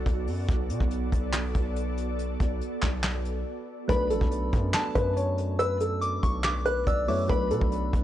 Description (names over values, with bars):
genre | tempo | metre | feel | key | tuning
hip hop, trap | 141 BPM | 4/4 | half-time | B minor | A4 = 439 Hz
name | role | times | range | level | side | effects
ethereal airy pad | sustained chords | 0.0-3.9 s | B3 to D5 | -35 LUFS | right 1 dB | ensemble chorus, built-in reverb
distorted 808-style bass | bass | 0.0-8.0 s | A1 to B2 | -30 LUFS | equal | distortion
soft brush drum kit | drums | 0.1-8.0 s | handclaps, hi-hat, kick drum, snare drum | -28 LUFS | equal | vintage 12-bit sampler grit
felt-muted upright piano | melody | 3.9-8.0 s | A4 to D5 | -29 LUFS | left 1 dB | tape echo
soft synth bell | second line | 3.9-8.0 s | A5 to F#6 | -33 LUFS | equal | chorus, tape echo
soft electric-piano-like synth keys | accompaniment | 3.9-8.0 s | F#3 to E4 | -33 LUFS | right 1 dB | chorus
room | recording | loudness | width
studio reverb | dry, gritty hardware recording, cassette tape | -25 LUFS | side -12 dB against mid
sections
0.0-3.9 A section; 3.9-8.0 B section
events
break 3.5-3.9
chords
0.0 Bm7